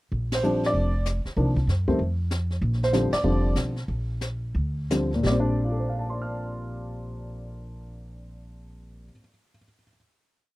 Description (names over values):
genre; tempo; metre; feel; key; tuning
jazz piano trio; 163-193 BPM; 4/4; swing 63% on 8ths; Bb major; A4 = 439 Hz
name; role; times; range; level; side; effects
upright bass; bass; 0.1-9.1 s; F1 to Gb2; -27 LUFS; equal; none
jazz brush drum kit; drums; 0.1-5.5 s; brushed snare drum, hi-hat, kick drum, ride cymbal, snare drum; -32 LUFS; equal; none
dark baby grand piano; melody; 0.3-9.9 s; Bb2 to F6; -25 LUFS; equal; none
room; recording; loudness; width
little or no reverb; dry, close 1970s-style studio recording; -23 LUFS; side -18 dB against mid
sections
0.1-5.3 A section; 5.3-8.2 final chord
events
band accent 0.3, 3.1; slowing down 2.6-5.3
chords
0.1 Bb69; 1.4 Cm11; 2.0 N.C.; 2.6 Bb69